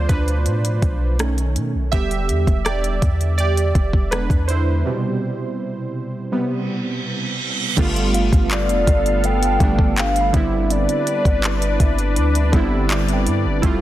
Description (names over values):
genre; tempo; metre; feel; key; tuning
contemporary R&B; 82 BPM; 4/4; straight; unclear; A4 = 440 Hz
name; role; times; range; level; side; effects
warm analog keys; accompaniment; 0.0-13.8 s; B2 to E5; -22 LUFS; right 2 dB; chorus
clean 808-style bass; bass; 0.0-13.8 s; E1 to B2; -20 LUFS; equal; none
smooth R&B drum kit; drums; 0.1-13.8 s; crash cymbal, handclaps, hi-hat, kick drum, rim click; -20 LUFS; equal; soft clipping on snare
reverse cymbal; sound effects; 6.6-7.8 s; none; -26 LUFS; right 5 dB; none
warm analog pad; sustained chords; 7.8-13.8 s; A3 to F5; -26 LUFS; left 2 dB; chorus
soft round pluck; texture; 8.1-13.8 s; D5 to D6; -35 LUFS; left 3 dB; none
hollow clarinet-like synth lead; melody; 8.5-12.2 s; D5 to G5; -22 LUFS; left 1 dB; chorus, ping-pong delay
room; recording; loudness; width
digital ambience; dense, heavily limited modern master; -17 LUFS; side -14 dB against mid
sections
0.0-7.8 A section; 7.8-13.8 B section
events
synth keys solo 0.0-7.8; break 4.9-7.8; reverse cymbal 6.6-7.8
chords
0.0 Bm7b5; 1.2 B7; 1.9 Em7; 4.1 E7; 4.9 Cmaj7/B; 7.8 G9; 10.3 Cmaj9/G